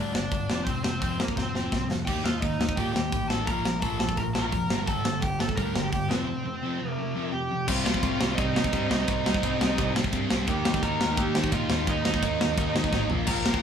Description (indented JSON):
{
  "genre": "punk rock",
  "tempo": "171 BPM",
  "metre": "4/4",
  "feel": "straight",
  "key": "unclear",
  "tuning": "A4 = 436 Hz",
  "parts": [
    { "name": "bluesy overdriven lead guitar", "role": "melody", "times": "0.0-13.6 s", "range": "Bb3 to Bb5", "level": "-31 LUFS", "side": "right 1 dB", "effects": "distortion" },
    { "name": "crunchy overdriven guitar", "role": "riff", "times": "0.0-13.6 s", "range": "F2 to Eb4", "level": "-33 LUFS", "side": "left 5 dB", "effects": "none" },
    { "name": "growling picked electric bass", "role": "bass", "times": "0.0-13.6 s", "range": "F1 to Eb3", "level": "-33 LUFS", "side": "equal", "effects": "overdrive" },
    { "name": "tight metal drum kit", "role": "drums", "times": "0.1-13.6 s", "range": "crash cymbal, hi-hat, kick drum, ride cymbal, snare drum, toms", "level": "-27 LUFS", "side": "equal", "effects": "none" },
    { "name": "sludgy distorted guitar", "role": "riff", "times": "2.1-13.6 s", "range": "F2 to Eb4", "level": "-34 LUFS", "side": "right 6 dB", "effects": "overdrive" },
    { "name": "overdriven electric guitar", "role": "riff", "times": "7.7-13.6 s", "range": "Bb2 to Eb4", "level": "-32 LUFS", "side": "equal", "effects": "none" }
  ],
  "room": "light reverb",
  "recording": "band playing live in one room",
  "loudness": "-24 LUFS",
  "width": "side -8 dB against mid",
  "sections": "0.0-7.7 A section; 7.7-13.6 B section",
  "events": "drum fill 1.4-2.1, 12.9-13.3; break 6.3-7.7",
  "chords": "0.5 F5; 2.1 Eb; 3.5 Bb5; 4.7 Gm; 6.1 F5; 7.7 Cm; 10.5 Eb; 13.1 Bb5",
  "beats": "0.32 | 0.67 1.02 1.37 1.72 | 2.07 2.42 2.77 3.12 | 3.47 3.82 4.17 4.53 | 4.88 5.23 5.58 5.93 | 6.28 6.63 6.98 7.33 | 7.68 8.03 8.38 8.73 | 9.08 9.43 9.78 10.13 | 10.48 10.83 11.18 11.53 | 11.88 12.23 12.58 12.93 | 13.28"
}